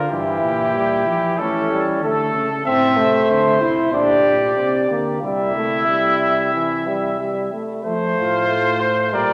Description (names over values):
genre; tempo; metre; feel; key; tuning
classical, imitative canzona for brass ensemble; 93 BPM; 4/4; straight; F major; A4 = 441 Hz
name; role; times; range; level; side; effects
warm trumpet; melody; 0.0-9.3 s; G4 to E5; -24 LUFS; equal; none
warm flugelhorn; second line; 0.0-9.3 s; C#4 to C5; -24 LUFS; equal; none
warm euphonium; accompaniment; 0.0-9.3 s; D3 to E4; -24 LUFS; equal; none
dark tuba; bass; 0.0-9.3 s; G2 to F3; -31 LUFS; equal; none
room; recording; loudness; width
wet church reverb, RT60 2.7 s; none; -19 LUFS; mono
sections
0.0-7.8 A section; 7.8-9.3 B section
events
none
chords
0.1 Edim/G; 1.4 A/E; 2.7 Am; 3.9 Gm/Bb; 5.2 C; 7.8 F